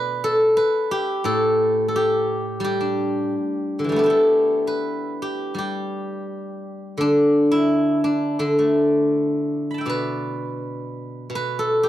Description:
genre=chinese traditional, Chinese solo plucked strings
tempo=77-89 BPM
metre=2/4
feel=rubato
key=G gong mode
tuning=A4 = 439 Hz
part: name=steel-string zither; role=solo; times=0.0-11.9 s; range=A2 to B5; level=-19 LUFS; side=equal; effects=none
room=studio ambience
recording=dry, close 1970s-style studio recording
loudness=-18 LUFS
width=side -12 dB against mid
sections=0.0-4.1 A section; 4.1-11.9 B section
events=none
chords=none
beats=0.58 | 1.26 1.94 | 2.62 3.33 | 4.08 4.84 | 5.57 6.29 | 7.00 7.70 | 8.41 9.13 | 9.88 10.61 | 11.32

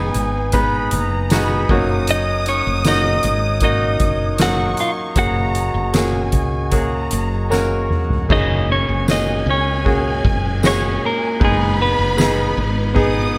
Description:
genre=pop ballad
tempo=78 BPM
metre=4/4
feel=straight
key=F# major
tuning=A4 = 436 Hz
part: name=clean electric guitar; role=melody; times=0.0-13.4 s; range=G#3 to F#5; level=-24 LUFS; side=equal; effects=none
part: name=warm studio violin section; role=second line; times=0.0-13.4 s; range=F#5 to D#6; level=-29 LUFS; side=equal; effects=none
part: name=bright concert grand piano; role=accompaniment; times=0.0-13.4 s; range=C#3 to B4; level=-24 LUFS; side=equal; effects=none
part: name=glass harmonica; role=sustained chords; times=0.0-8.3 s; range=G#4 to D#6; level=-31 LUFS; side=equal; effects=none
part: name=woody fretless electric bass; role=bass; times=0.0-13.4 s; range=F#1 to C#2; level=-24 LUFS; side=equal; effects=ensemble chorus
part: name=soft-mallet drum kit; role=drums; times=0.1-13.4 s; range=crash cymbal, hi-hat, kick drum, ride cymbal, snare drum, toms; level=-23 LUFS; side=equal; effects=none
part: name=tambourine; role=percussion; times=1.3-12.4 s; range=none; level=-37 LUFS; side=equal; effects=none
room=light reverb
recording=none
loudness=-18 LUFS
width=mono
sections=0.0-8.3 A section; 8.3-13.4 A section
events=drum fill 7.5-8.3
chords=0.0 G#m/F#; 1.7 D#m7/F#; 8.3 F#add9; 11.4 G#m/F#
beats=0.53 1.31 | 2.08 2.85 3.61 4.38 | 5.16 5.93 6.72 7.51 | 8.30 9.08 9.86 10.64 | 11.41 12.18 12.96

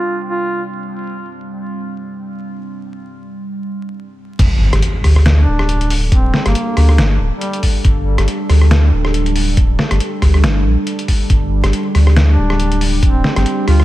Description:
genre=deep dubstep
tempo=139 BPM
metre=4/4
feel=swing 56% on 16ths, half-time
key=unclear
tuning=A4 = 440 Hz
part: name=warm duduk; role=melody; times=0.0-0.6, 5.4-7.6, 12.3-13.8 s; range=G3 to F4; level=-23 LUFS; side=equal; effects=dub echo
part: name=deep dark ambient pad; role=sustained chords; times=0.0-13.8 s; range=G3 to D5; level=-23 LUFS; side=right 2 dB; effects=chorus, built-in reverb
part: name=saturated sub bass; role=bass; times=4.4-13.8 s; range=D1 to D2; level=-12 LUFS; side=equal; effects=none
part: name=electronic kick drum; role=drums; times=4.4-13.1 s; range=none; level=-14 LUFS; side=equal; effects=none
part: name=trip hop sampler-style drum kit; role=drums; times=4.4-13.8 s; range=crash cymbal, hi-hat, rim click, snare drum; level=-20 LUFS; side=left 1 dB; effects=none
part: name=impact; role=sound effects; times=4.4-6.1 s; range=none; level=-21 LUFS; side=equal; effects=none
room=little or no reverb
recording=vinyl crackle, low-pass filter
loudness=-12 LUFS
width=side -15 dB against mid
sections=0.0-4.4 A section; 4.4-13.8 B section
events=filter sweep on ambient pad 0.0-4.4; drop 4.4-13.8; impact 4.4-6.1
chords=0.0 G5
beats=0.08 0.51 | 0.94 1.37 1.80 2.23 | 2.67 3.10 3.53 3.96 | 4.39 4.83 5.26 5.69 | 6.12 6.55 6.98 7.42 | 7.85 8.28 8.71 9.14 | 9.57 10.01 10.44 10.87 | 11.30 11.73 12.16 12.60 | 13.03 13.46

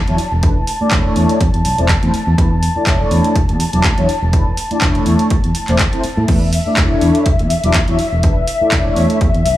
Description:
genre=filtered disco house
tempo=123 BPM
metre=4/4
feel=swing 55% on 16ths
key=unclear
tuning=A4 = 440 Hz
part: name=muted studio string section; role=sustained chords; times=0.0-9.6 s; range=E5 to A5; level=-21 LUFS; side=left 2 dB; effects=sidechain pumping, low-pass filter
part: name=fingered electric bass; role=bass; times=0.0-9.5 s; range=E1 to A2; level=-17 LUFS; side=equal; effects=sidechain pumping, low-pass filter
part: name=mellow synth brass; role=accompaniment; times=0.1-9.2 s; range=F#3 to D5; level=-18 LUFS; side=equal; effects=chorus, phaser, cassette tape, sidechain pumping, low-pass filter
part: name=punchy analog drum machine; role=drums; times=0.1-9.6 s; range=crash cymbal, handclaps, hi-hat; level=-22 LUFS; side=right 1 dB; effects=sidechain pumping on hats, sidechain pumping on cymbals
part: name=electronic kick drum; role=drums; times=0.4-9.3 s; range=none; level=-16 LUFS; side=equal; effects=none
room=light reverb, digital ambience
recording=small room ambience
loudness=-12 LUFS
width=side -14 dB against mid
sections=0.0-9.6 A section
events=filter sweep 0.0-9.6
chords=0.2 E7sus4; 1.4 Am; 2.4 E7sus4; 3.4 Dmaj9/E; 4.1 E7sus4; 5.3 Am/E; 6.3 E7sus4; 7.3 Dadd9/E; 8.0 E7sus4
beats=| 0.43 0.92 1.41 1.90 | 2.38 2.87 3.36 3.85 | 4.33 4.82 5.31 5.80 | 6.29 6.77 7.26 7.75 | 8.24 8.72 9.21

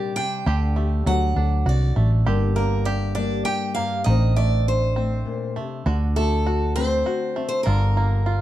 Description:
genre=acoustic folk duo or small band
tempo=100 BPM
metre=3/4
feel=straight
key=G minor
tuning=A4 = 440 Hz
part: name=picked steel-string acoustic guitar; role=melody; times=0.0-8.4 s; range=A4 to G5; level=-26 LUFS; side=right 1 dB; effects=plate reverb
part: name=nylon-string guitar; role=accompaniment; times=0.0-8.4 s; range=G2 to C5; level=-28 LUFS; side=left 6 dB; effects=none
part: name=bluegrass banjo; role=arpeggios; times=0.0-8.4 s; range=D3 to G4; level=-31 LUFS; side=right 4 dB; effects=none
part: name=hollow-body short-scale fingered electric bass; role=bass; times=0.5-8.4 s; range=G1 to D2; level=-20 LUFS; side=equal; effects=none
room=light reverb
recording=dark, warm production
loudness=-19 LUFS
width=side -13 dB against mid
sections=0.0-8.4 A section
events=none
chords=0.5 Dsus4; 1.1 D; 2.3 Gm; 4.1 Adim; 5.9 D7; 7.7 Gm7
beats=| 0.46 1.06 1.66 | 2.26 2.86 3.46 | 4.06 4.66 5.26 | 5.87 6.47 7.07 | 7.67 8.27

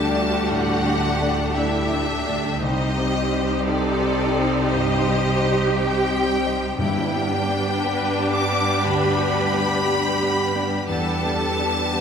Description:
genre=cinematic, emotional film score for orchestra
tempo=58 BPM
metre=4/4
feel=rubato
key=G major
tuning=A4 = 440 Hz
part: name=rich studio violin section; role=melody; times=0.0-12.0 s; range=D5 to D6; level=-26 LUFS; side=left 2 dB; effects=none
part: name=warm studio violin section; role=second line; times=0.0-12.0 s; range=G4 to C5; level=-29 LUFS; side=left 2 dB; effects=none
part: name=warm concert grand piano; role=accompaniment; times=0.0-12.0 s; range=C2 to Eb5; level=-26 LUFS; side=left 2 dB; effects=none
part: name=warm studio viola section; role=accompaniment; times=0.0-12.0 s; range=G3 to Eb4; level=-26 LUFS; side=right 1 dB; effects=none
part: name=mellow French horn section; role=sustained chords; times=0.0-12.0 s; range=G3 to D4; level=-29 LUFS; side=left 6 dB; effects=none
part: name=warm studio cello section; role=bass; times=0.0-12.0 s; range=D4 to B4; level=-28 LUFS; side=right 4 dB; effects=none
part: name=warm studio double bass section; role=bass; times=0.0-12.0 s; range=C2 to G2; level=-28 LUFS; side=right 4 dB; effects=none
part: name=timpani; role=percussion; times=6.8-8.3 s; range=G2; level=-31 LUFS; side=equal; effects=none
room=wet scoring stage reverb, RT60 1.5 s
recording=minimal, uncompressed stereo recording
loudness=-19 LUFS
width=side -7 dB against mid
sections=0.0-12.0 A section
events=none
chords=0.0 Dsus4; 2.6 Cm; 6.8 G; 10.9 Em7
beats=0.48 1.55 | 2.61 3.66 4.70 5.74 | 6.78 7.81 8.84 9.86 | 10.88 11.91

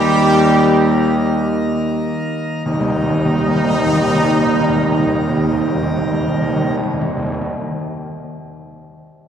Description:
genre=classical, ceremonial fanfare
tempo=52-62 BPM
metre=3/4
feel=straight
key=Eb major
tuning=A4 = 441 Hz
part: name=clear trumpet section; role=melody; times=0.0-6.8 s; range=Eb4 to G4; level=-22 LUFS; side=right 2 dB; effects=none
part: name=mellow French horn section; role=sustained chords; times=0.0-6.8 s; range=G3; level=-23 LUFS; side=left 4 dB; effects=none
part: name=mellow trombone section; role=sustained chords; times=0.0-6.8 s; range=Eb3 to G3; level=-24 LUFS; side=equal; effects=none
part: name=pipe organ, plenum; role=sustained chords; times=0.0-6.8 s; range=Eb3 to Bb4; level=-22 LUFS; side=equal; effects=none
part: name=warm tuba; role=bass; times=0.0-6.8 s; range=Eb2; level=-18 LUFS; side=right 1 dB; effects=none
part: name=timpani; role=percussion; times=0.0-7.5 s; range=Eb3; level=-21 LUFS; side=equal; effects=none
room=wet church reverb, RT60 3.1 s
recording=recorded in a church or concert hall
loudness=-14 LUFS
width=side -8 dB against mid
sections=0.0-2.7 A section; 2.7-6.0 B section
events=slowing down 0.0-2.7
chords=0.0 Eb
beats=0.51 1.54 | 2.66 3.77 4.88

